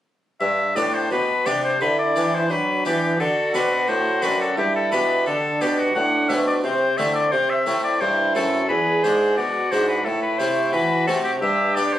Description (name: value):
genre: classical, baroque-style sonata movement with continuo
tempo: 88 BPM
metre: 4/4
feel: straight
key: G major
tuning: A4 = 444 Hz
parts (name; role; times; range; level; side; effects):
- bright oboe; melody; 0.4-12.0 s; F#4 to F#5; -22 LUFS; left 2 dB; none
- harpsichord; accompaniment; 0.4-12.0 s; E2 to G4; -25 LUFS; equal; none
- mellow bassoon; bass; 0.4-11.9 s; E2 to F#3; -24 LUFS; equal; none
- dark violin; second line; 1.8-12.0 s; C4 to G#4; -25 LUFS; right 2 dB; none
room: light reverb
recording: recorded on a phone in the room, club reverb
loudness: -18 LUFS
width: side -12 dB against mid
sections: 0.4-12.0 A section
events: none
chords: 0.4 G; 3.2 D7; 4.6 G; 6.0 Am; 8.7 E7; 10.1 Am; 11.4 G